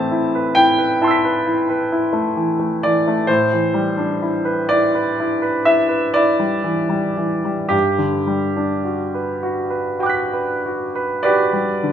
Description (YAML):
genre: classical, impressionist solo piano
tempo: 31-44 BPM (dotted quarters)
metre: 9/8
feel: rubato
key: unclear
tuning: A4 = 440 Hz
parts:
  - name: clear concert grand piano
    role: solo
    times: 0.0-11.9 s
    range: G2 to B6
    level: -16 LUFS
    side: equal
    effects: none
room: wet recital hall reverb, RT60 1.6 s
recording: none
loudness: -16 LUFS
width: side -9 dB against mid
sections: 0.0-11.9 A section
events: none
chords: 0.0 Am9; 7.7 Gmaj7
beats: 0.52 1.89 | 3.28 4.69 6.14 | 7.72 9.42 11.27